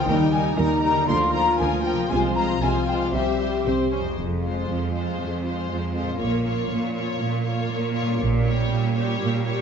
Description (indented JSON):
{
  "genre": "cinematic",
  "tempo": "119 BPM",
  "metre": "4/4",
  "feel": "straight",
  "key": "F minor from 4.2 s",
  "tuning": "A4 = 440 Hz",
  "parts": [
    { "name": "rich symphonic violin section", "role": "melody", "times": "0.0-9.6 s", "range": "Bb4 to Db5", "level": "-33 LUFS", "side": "left 5 dB", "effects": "none" },
    { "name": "mellow hollow concert flute", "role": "second line", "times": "0.0-3.7 s", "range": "E5 to C6", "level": "-26 LUFS", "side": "left 2 dB", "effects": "none" },
    { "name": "warm symphonic violin section", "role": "second line", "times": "0.0-9.6 s", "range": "F4 to C6", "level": "-31 LUFS", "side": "left 3 dB", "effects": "none" },
    { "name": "warm symphonic viola section", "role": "accompaniment", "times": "0.0-9.6 s", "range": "F3 to G4", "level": "-29 LUFS", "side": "right 1 dB", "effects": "none" },
    { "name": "concert harp", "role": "arpeggios", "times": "0.0-9.6 s", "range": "F2 to C5", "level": "-31 LUFS", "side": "left 5 dB", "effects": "none" },
    { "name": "dark French horn section", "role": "sustained chords", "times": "0.1-3.9 s", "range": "Bb3 to G4", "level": "-26 LUFS", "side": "left 3 dB", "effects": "none" },
    { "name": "rich symphonic cello section", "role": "bass", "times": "0.1-9.6 s", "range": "F2 to Eb3", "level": "-26 LUFS", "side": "right 4 dB", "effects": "none" },
    { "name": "warm studio double bass section", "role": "bass", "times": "0.1-8.6 s", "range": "F1 to Eb2", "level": "-28 LUFS", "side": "right 3 dB", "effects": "none" }
  ],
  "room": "wet scoring stage reverb, RT60 1.7 s",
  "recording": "nothing above 7.7 kHz",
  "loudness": "-21 LUFS",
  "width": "side -7 dB against mid",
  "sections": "0.0-4.2 A section; 4.2-9.6 B section",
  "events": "none",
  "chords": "0.1 Eb; 1.1 Bb/D; 2.1 Fm/C; 3.1 C; 4.2 Fm; 6.2 Bbm; 8.2 Gdim/Bb"
}